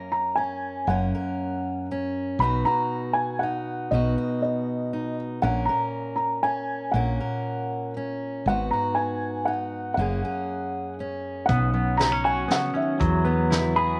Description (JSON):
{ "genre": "acoustic folk duo or small band", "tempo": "119 BPM", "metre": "3/4", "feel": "straight", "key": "F# mixolydian", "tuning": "A4 = 439 Hz", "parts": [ { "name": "felt-muted upright piano", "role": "melody", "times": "0.0-14.0 s", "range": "D#5 to B5", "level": "-29 LUFS", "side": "equal", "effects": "none" }, { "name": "fingerpicked steel-string acoustic guitar", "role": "accompaniment", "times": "0.0-14.0 s", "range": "F#2 to A#4", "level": "-31 LUFS", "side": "equal", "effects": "none" }, { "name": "woody fretless electric bass", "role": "bass", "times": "0.9-14.0 s", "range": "F#1 to E2", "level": "-28 LUFS", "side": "equal", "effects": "none" }, { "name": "semi-hollow electric guitar", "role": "arpeggios", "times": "11.5-14.0 s", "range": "F#3 to G#4", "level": "-30 LUFS", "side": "equal", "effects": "tremolo" }, { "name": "vintage brush drum kit", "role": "drums", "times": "11.5-13.6 s", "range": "hi-hat, kick drum, snare drum", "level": "-30 LUFS", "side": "equal", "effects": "none" } ], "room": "light reverb", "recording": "none", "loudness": "-26 LUFS", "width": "mono", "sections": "0.0-11.5 A section; 11.5-14.0 B section", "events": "none", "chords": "0.0 F#; 2.4 B; 5.4 F#/A#; 8.5 G#m7; 10.0 F#add9; 11.5 Bsus2; 13.0 Eadd9" }